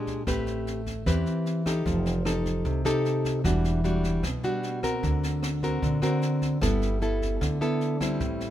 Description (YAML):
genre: bossa nova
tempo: 151 BPM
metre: 4/4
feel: straight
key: G major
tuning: A4 = 441 Hz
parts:
  - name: nylon-string guitar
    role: accompaniment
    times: 0.0-8.5 s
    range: A2 to B4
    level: -26 LUFS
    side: equal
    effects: none
  - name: jazz brush drum kit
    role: drums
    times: 0.1-8.5 s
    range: kick drum, rim click, snare drum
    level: -34 LUFS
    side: right 1 dB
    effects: none
  - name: upright bass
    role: bass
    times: 0.3-8.5 s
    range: E1 to E2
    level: -30 LUFS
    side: right 1 dB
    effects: none
room: little or no reverb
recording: minimal, uncompressed stereo recording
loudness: -24 LUFS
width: side -12 dB against mid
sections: 0.0-8.5 A section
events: none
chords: 0.3 Am9; 1.9 F9; 3.4 Em9; 5.0 Daug7; 6.6 G69